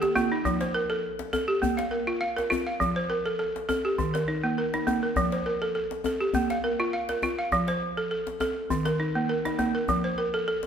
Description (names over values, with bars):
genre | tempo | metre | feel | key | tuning
west african traditional, West African string and xylophone music | 102 BPM | 4/4 | swing 53% on 16ths | F mixolydian | A4 = 440 Hz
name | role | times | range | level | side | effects
balafon | arpeggios | 0.0-10.7 s | Eb3 to F5 | -25 LUFS | right 1 dB | none
djembe | percussion | 0.0-10.7 s | none | -34 LUFS | left 5 dB | none
room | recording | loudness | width
wet recital hall reverb, RT60 1.7 s | none | -25 LUFS | side -8 dB against mid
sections
0.0-10.7 A section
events
balafon fill 0.0-0.4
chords
0.4 F; 1.6 Bb5; 2.8 F; 4.0 Eb; 5.2 F; 6.3 Bb5; 7.5 F; 8.7 Eb5; 9.9 F